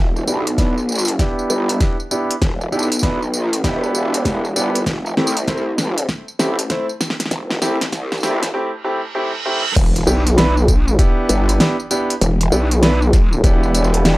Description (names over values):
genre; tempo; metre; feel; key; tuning
glitch hop; 98 BPM; 4/4; swing 63% on 16ths; E phrygian; A4 = 440 Hz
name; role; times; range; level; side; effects
growl bass; bass; 0.0-14.2 s; E1 to C2; -19 LUFS; equal; chorus, high-pass filter
pop drum kit; drums; 0.2-14.2 s; crash cymbal, hi-hat, snare drum, tambourine; -21 LUFS; equal; small room reverb
clear concert grand piano; stabs; 0.3-14.2 s; A3 to C5; -21 LUFS; right 1 dB; sidechain pumping, low-pass filter, tape echo
electronic kick drum; drums; 0.6-13.6 s; none; -16 LUFS; equal; small room reverb
reverse cymbal and impact; sound effects; 8.9-12.2 s; none; -25 LUFS; right 2 dB; none
vowel-sweep wobble bass; bass; 10.1-13.4 s; B1; -15 LUFS; equal; chorus, transformer saturation
room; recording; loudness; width
light reverb; dry, gritty hardware recording, high-pass filter; -15 LUFS; side -19 dB against mid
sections
0.0-9.8 A section; 9.8-14.2 B section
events
build-up 0.0-9.8; drum fill 0.0-8.5; filter sweep on grand piano 0.0-9.8; filter sweep 0.0-9.8; reverse cymbal 8.9-9.8; drop 9.8-14.2; impact 9.8-12.2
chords
0.0 Em7; 4.9 Fmaj7 (rootless); 9.8 Em7